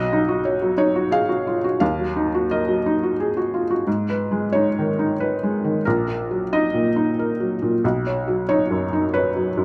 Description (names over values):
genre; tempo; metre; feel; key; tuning
classical, contemporary piece for solo felt piano; 91 BPM; 3/4; rubato; Eb minor; A4 = 440 Hz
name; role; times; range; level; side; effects
felt-muted upright piano; solo; 0.0-9.6 s; Bb1 to F5; -21 LUFS; equal; none
room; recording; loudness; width
light reverb; close, detailed microphones; -21 LUFS; mono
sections
0.0-3.9 A section; 3.9-9.6 A section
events
none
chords
0.0 Badd9; 1.8 Ebm; 3.9 Abm; 5.8 Ebm/Bb; 7.8 Badd9